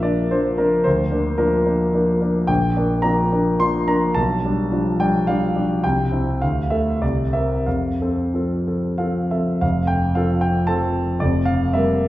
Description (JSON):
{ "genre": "classical, romantic character piece for solo piano", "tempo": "88-117 BPM", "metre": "3/4", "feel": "rubato", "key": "F major", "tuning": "A4 = 442 Hz", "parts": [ { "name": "warm grand piano", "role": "solo", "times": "0.0-12.1 s", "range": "F1 to C6", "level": "-17 LUFS", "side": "equal", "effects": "none" } ], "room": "wet recital hall reverb, RT60 1.6 s", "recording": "recorded in a church or concert hall", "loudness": "-17 LUFS", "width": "side -15 dB against mid", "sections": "0.0-9.6 A section; 9.6-12.1 B section", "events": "none", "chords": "0.0 Bb; 0.9 Bb/D; 2.5 Gm7/Bb; 4.2 G7/B; 5.8 C; 6.4 Dm; 7.0 C7; 7.7 F; 11.2 Gm7/F", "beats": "0.32 | 0.86 1.39 1.94 | 2.50 3.05 3.61 | 4.17 4.72 5.27 | 5.83 6.42 7.02 | 7.66 8.33 8.99 | 9.62 10.17 10.69 | 11.22 11.74" }